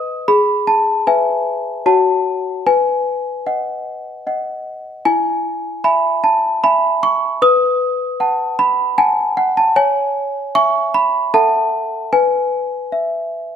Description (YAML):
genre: classical, lullaby for celesta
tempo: 76 BPM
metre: 3/4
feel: straight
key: E major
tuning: A4 = 442 Hz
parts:
  - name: worn celesta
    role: solo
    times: 0.0-13.6 s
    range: E4 to G#6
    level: -14 LUFS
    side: equal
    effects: none
room: moderate recital hall reverb, RT60 1.7 s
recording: none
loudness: -14 LUFS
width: side -8 dB against mid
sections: 0.0-5.1 A section; 5.1-13.6 B section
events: none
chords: 0.3 E/G#; 1.9 F#m; 2.7 B; 5.1 E; 7.4 B7; 9.8 C#m; 11.3 F#m7/A; 12.1 E/B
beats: | 0.28 1.07 1.86 | 2.66 3.46 4.26 | 5.06 5.84 6.63 | 7.41 8.20 8.98 | 9.76 10.55 11.34 | 12.13 12.93